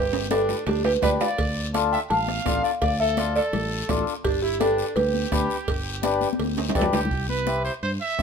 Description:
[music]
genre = latin, cumbia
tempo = 168 BPM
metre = 4/4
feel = straight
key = unclear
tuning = A4 = 441 Hz
[part]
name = buzzing marimba with medium mallets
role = melody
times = 0.0-6.7 s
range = G4 to A5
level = -24 LUFS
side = right 1 dB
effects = none
[part]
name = bright trumpet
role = second line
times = 0.0-8.2 s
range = D4 to F5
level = -30 LUFS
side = right 4 dB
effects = none
[part]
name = fingered electric bass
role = bass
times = 0.0-8.2 s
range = G1 to G2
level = -29 LUFS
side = equal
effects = none
[part]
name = congas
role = percussion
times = 0.1-8.2 s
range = none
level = -31 LUFS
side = left 6 dB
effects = none
[part]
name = timbales and cowbell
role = percussion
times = 0.1-7.0 s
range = none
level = -31 LUFS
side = right 5 dB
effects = none
[part]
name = mellow accordion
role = accompaniment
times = 0.3-8.2 s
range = C4 to B4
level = -26 LUFS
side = left 5 dB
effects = none
[part]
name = bombo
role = percussion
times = 0.3-8.2 s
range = none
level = -30 LUFS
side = right 2 dB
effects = none
[part]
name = guiro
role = percussion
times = 0.3-8.2 s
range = none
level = -36 LUFS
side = left 6 dB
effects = none
[sound]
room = light reverb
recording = minimal, uncompressed stereo recording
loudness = -21 LUFS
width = side -6 dB against mid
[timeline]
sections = 0.0-7.1 A section; 7.1-8.2 B section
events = drum fill 0.0-1.4, 6.2-7.1; trumpet solo 7.1-8.2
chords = 0.0 G; 1.4 Dm; 4.2 G; 7.1 C

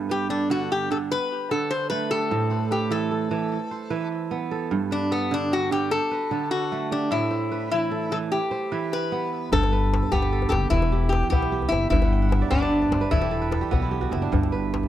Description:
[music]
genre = west african traditional, West African string and xylophone music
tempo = 100 BPM (dotted quarters)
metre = 12/8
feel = straight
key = G major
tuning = A4 = 440 Hz
[part]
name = kora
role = arpeggios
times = 0.0-14.9 s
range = G2 to G5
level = -26 LUFS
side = right 6 dB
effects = tape echo
[part]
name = lap resonator guitar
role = melody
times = 0.1-13.9 s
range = B3 to C5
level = -25 LUFS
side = left 2 dB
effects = tape echo
[part]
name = upright bass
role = bass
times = 9.5-14.8 s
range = E1 to B1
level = -24 LUFS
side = left 1 dB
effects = none
[part]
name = djembe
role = percussion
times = 9.5-14.9 s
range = none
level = -27 LUFS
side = left 3 dB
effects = none
[sound]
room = light reverb, studio reverb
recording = dark, warm production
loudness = -22 LUFS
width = side -12 dB against mid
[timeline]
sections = 0.0-9.5 A section; 9.5-14.9 B section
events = kora fill 11.9-14.3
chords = 0.0 G; 1.1 D5; 2.3 Am; 3.5 E5; 4.7 G; 5.9 D; 7.1 Am; 8.3 Em; 9.5 G; 10.7 Em; 11.9 G; 13.1 E5; 14.3 G

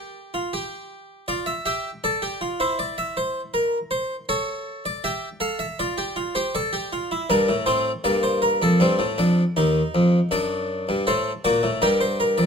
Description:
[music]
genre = classical, baroque-style 4-part fugue for harpsichord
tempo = 80 BPM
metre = 4/4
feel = straight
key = unclear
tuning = A4 = 442 Hz
[part]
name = harpsichord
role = solo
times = 0.0-12.5 s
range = Eb2 to F5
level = -20 LUFS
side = equal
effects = none
[sound]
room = light reverb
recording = close, detailed microphones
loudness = -21 LUFS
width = side -6 dB against mid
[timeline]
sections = 0.0-12.5 A section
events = none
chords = 0.0 N.C.; 1.3 Dm/F; 2.8 C9/E; 4.3 A7; 5.8 Dm/F; 7.3 Gm; 8.8 Am7b5; 10.3 D7/F#; 11.8 Gm

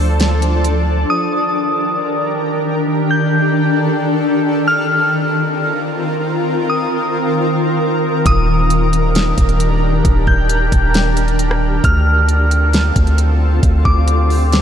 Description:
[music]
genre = hip hop, atmospheric cloud-rap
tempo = 134 BPM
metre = 4/4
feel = half-time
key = Eb lydian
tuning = A4 = 440 Hz
[part]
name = shimmering ambient pad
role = sustained chords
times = 0.0-14.6 s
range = D3 to Bb4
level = -16 LUFS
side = equal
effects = chorus, built-in reverb, sidechain pumping
[part]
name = long sustained 808-style bass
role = bass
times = 0.0-1.1, 8.3-14.6 s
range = Eb1 to D2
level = -14 LUFS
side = equal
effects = none
[part]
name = smooth R&B drum kit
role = drums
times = 0.2-0.7, 8.3-14.6 s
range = hi-hat, kick drum, rim click, snare drum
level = -18 LUFS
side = equal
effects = none
[part]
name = glassy synth bell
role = melody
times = 1.1-14.6 s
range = D6 to G6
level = -20 LUFS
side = left 1 dB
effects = chorus, low-pass filter, analog delay
[sound]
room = wet huge ambient reverb, RT60 4.0 s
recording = dreamy mix soaked in reverb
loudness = -13 LUFS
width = side -8 dB against mid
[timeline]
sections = 0.0-1.1 A section; 1.1-14.6 B section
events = none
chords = 0.0 Dm; 1.1 Ebmaj7; 4.7 F7sus4; 8.3 Ebmaj7; 11.8 Dm7

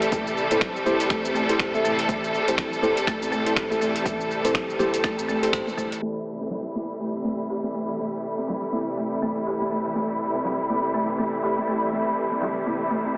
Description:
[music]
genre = afro house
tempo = 122 BPM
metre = 4/4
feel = swing 59% on 16ths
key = A minor pentatonic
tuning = A4 = 440 Hz
[part]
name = rich studio string section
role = sustained chords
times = 0.0-13.2 s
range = C3 to A4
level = -26 LUFS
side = equal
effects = sidechain pumping, low-pass filter
[part]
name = folk marimba with medium hard mallets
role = arpeggios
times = 0.0-13.2 s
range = E3 to G4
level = -30 LUFS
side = equal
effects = sidechain pumping, low-pass filter, tape echo
[part]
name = deep mellow chord stab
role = stabs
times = 0.0-6.3 s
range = E4 to E5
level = -26 LUFS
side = equal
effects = chorus, sidechain pumping, tape echo
[part]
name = round analog bass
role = bass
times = 0.0-5.9 s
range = E1 to A2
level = -43 LUFS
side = equal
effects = sidechain pumping
[part]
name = deep house drum kit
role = drums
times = 0.0-13.1 s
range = finger snaps, handclaps, hi-hat, shaker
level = -30 LUFS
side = equal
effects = overdrive, low-pass filter on hats, low-pass filter on perc, low-pass filter on snare
[part]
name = electronic kick drum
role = drums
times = 0.1-5.9 s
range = none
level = -32 LUFS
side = equal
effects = overdrive
[part]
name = congas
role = percussion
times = 0.1-13.2 s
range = none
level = -35 LUFS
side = equal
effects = none
[sound]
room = wet cathedral reverb, RT60 5.0 s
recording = dreamy mix soaked in reverb, low-pass filter, AM radio sound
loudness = -22 LUFS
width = side -36 dB against mid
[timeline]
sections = 0.0-6.0 A section; 6.0-13.2 B section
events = filter sweep on marimba 6.0-13.2; filter sweep 6.0-13.2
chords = 0.0 Am7

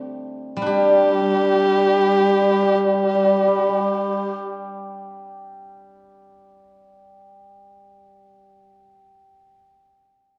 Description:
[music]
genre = chinese traditional, Chinese chamber ensemble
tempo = 71 BPM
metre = 4/4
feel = straight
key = unclear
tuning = A4 = 440 Hz
[part]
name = hammered dulcimer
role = second line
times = 0.0-8.6 s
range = G3 to D4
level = -22 LUFS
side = equal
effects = none
[part]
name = steel-string zither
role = accompaniment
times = 0.6-6.6 s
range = G3 to G4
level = -29 LUFS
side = equal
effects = none
[part]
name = dark erhu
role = melody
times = 0.7-4.4 s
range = G4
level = -22 LUFS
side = equal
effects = none
[sound]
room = moderate scoring stage reverb, RT60 1.9 s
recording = worn, warbling old tape, cassette tape, warbly pitch drift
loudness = -18 LUFS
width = mono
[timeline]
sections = 0.7-4.1 A section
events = none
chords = none

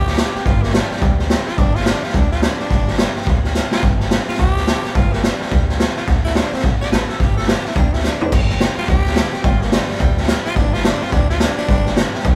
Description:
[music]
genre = rockabilly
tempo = 214 BPM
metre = 4/4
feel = swing 61% on 8ths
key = G mixolydian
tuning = A4 = 440 Hz
[part]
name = growling tenor saxophone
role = melody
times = 0.0-12.1 s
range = G3 to D5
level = -27 LUFS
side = equal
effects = none
[part]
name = picked steel-string acoustic guitar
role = accompaniment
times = 0.0-12.4 s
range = G2 to G4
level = -32 LUFS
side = equal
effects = none
[part]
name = upright bass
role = bass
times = 0.0-12.4 s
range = G1 to D2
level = -25 LUFS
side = equal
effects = none
[part]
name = dark upright piano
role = accompaniment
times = 0.1-12.4 s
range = A4 to A5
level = -34 LUFS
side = equal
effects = none
[part]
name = raw garage drum kit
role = drums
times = 0.1-12.3 s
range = crash cymbal, hi-hat, kick drum, snare drum, toms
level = -18 LUFS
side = equal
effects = none
[sound]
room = light reverb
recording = band playing live in one room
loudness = -17 LUFS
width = mono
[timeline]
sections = 0.0-8.3 A section; 8.3-12.4 A section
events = drum fill 3.5, 8.0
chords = 0.0 G; 6.1 D7; 7.2 G

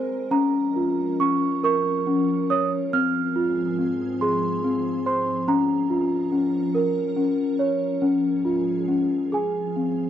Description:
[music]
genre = children's music, lullaby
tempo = 47 BPM (dotted quarters)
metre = 6/8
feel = rubato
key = unclear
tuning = A4 = 441 Hz
[part]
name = celesta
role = melody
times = 0.0-10.1 s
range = C4 to F6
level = -21 LUFS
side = equal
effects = none
[part]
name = soft additive organ-like pad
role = sustained chords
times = 0.0-10.1 s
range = Ab2 to Bb4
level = -31 LUFS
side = right 3 dB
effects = ensemble chorus, built-in reverb
[sound]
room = light reverb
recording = dry, close 1970s-style studio recording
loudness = -21 LUFS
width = side -10 dB against mid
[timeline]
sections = 0.0-10.1 A section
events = none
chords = 0.3 Bbm; 2.9 Fm/Ab; 5.5 Bbm; 8.0 Db/Ab; 9.3 Ab6

